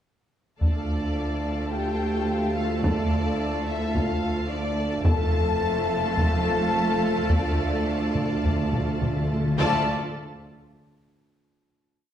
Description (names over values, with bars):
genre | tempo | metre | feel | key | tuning
cinematic, epic orchestral film score | 107 BPM | 4/4 | straight | D minor | A4 = 440 Hz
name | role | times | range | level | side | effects
warm symphonic violin section | melody | 0.6-9.9 s | D5 to A5 | -33 LUFS | left 4 dB | none
warm symphonic violin section | second line | 0.6-9.9 s | D5 to A5 | -34 LUFS | left 1 dB | none
warm symphonic viola section | accompaniment | 0.6-9.9 s | A3 to A4 | -34 LUFS | right 1 dB | none
mellow French horn section | sustained chords | 0.6-9.8 s | D4 to A4 | -31 LUFS | left 2 dB | none
rich symphonic string section | sustained chords | 0.6-9.9 s | A3 to A5 | -33 LUFS | right 1 dB | none
warm trombone section | sustained chords | 0.6-9.8 s | F3 to A3 | -34 LUFS | right 3 dB | none
dark symphonic cello section | bass | 0.6-9.9 s | D2 to F2 | -31 LUFS | right 2 dB | none
rich symphonic double bass section | bass | 0.6-9.9 s | F1 to D2 | -32 LUFS | right 1 dB | none
taiko ensemble | drums | 0.6-9.3 s | none | -25 LUFS | equal | none
timpani | percussion | 7.3-9.9 s | D3 | -30 LUFS | left 2 dB | none
room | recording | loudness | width
wet recital hall reverb, RT60 1.3 s | heard from further back in the room | -22 LUFS | side -10 dB against mid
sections
0.6-9.6 theme; 9.6-11.9 final chord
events
timpani fill 7.3-9.6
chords
0.6 Dm; 5.1 F; 7.3 Dm